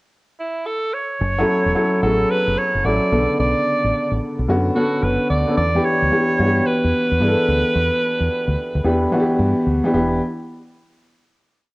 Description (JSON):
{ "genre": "R&B, new jack swing", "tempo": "110 BPM", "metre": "4/4", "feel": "swing 65% on 16ths", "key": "E dorian", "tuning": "A4 = 439 Hz", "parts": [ { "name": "bright alto saxophone", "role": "melody", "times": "0.4-9.4 s", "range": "E4 to D5", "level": "-21 LUFS", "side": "right 1 dB", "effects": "cassette tape" }, { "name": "deep dub fingered electric bass", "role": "bass", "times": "1.2-10.2 s", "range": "E1 to G2", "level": "-21 LUFS", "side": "equal", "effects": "none" }, { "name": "warm grand piano", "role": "accompaniment", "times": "1.4-10.2 s", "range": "C#3 to A4", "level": "-19 LUFS", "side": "left 1 dB", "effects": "none" } ], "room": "moderate spring reverb, RT60 1.4 s, studio reverb", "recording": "home recording on cassette", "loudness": "-16 LUFS", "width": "side -23 dB against mid", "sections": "0.0-1.2 pickup bar; 1.2-9.9 verse; 9.9-11.7 final chord", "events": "none", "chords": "0.0 N.C.; 1.2 F#m7; 3.1 Bm9; 5.6 Em7" }